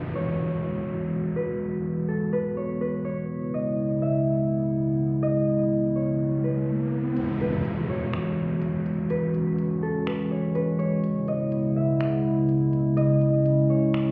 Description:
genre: hip hop, atmospheric cloud-rap.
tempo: 124 BPM.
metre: 4/4.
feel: half-time.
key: E major.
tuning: A4 = 436 Hz.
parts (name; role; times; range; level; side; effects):
Celtic harp; melody; 0.0-14.1 s; A4 to E5; -33 LUFS; equal; digital delay.
dark analog pad; sustained chords; 0.0-14.1 s; C#3 to F#4; -26 LUFS; equal; chorus.
downlifter and riser; sound effects; 0.0-11.0 s; none; -39 LUFS; equal; none.
trap drum kit; drums; 7.2-14.1 s; finger snaps, hi-hat; -41 LUFS; equal; none.
room: light reverb.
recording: heard muffled through a wall, stone room reverb, EQ.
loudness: -25 LUFS.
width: mono.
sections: 0.0-7.2 A section; 7.2-14.1 B section.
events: riser 5.9-7.2; kick muted 7.2-14.1.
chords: 0.0 Eadd9; 3.3 C#m7; 7.2 Eadd9; 11.0 C#m7.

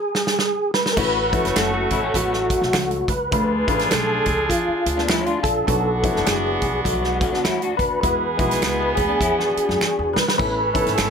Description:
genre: uptempo 1960s-style soul.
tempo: 102 BPM.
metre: 4/4.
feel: swing 60% on 8ths.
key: A major.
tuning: A4 = 436 Hz.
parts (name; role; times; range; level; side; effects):
percussive tonewheel organ; melody; 0.0-11.1 s; F4 to B4; -22 LUFS; equal; chorus vibrato, slow rotary speaker, tape echo.
natural country drum kit; drums; 0.1-11.1 s; crash cymbal, hi-hat, kick drum, snare drum, splash cymbal; -24 LUFS; right 2 dB; none.
bright saxophone section; second line; 1.0-11.1 s; A3 to A4; -27 LUFS; right 2 dB; tape echo.
warm concert grand piano; accompaniment; 1.0-11.1 s; F3 to A4; -27 LUFS; left 8 dB; none.
upright bass; bass; 1.0-11.1 s; F#1 to E3; -28 LUFS; equal; none.
congas; percussion; 1.0-10.8 s; none; -34 LUFS; right 3 dB; none.
electric guitar through a small old amp; riff; 1.6-10.2 s; F#3 to A4; -27 LUFS; left 8 dB; ensemble chorus.
finger snap; percussion; 1.6-11.1 s; none; -28 LUFS; right 3 dB; none.
room: light reverb.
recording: none.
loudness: -18 LUFS.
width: side -6 dB against mid.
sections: 1.0-11.1 A section.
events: drum fill 0.0-1.0, 9.8-10.4; stop 0.0-1.0.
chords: 0.0 N.C.; 1.0 A6; 3.3 Dm; 5.7 Bm; 8.0 Eadd9; 10.4 Aadd9.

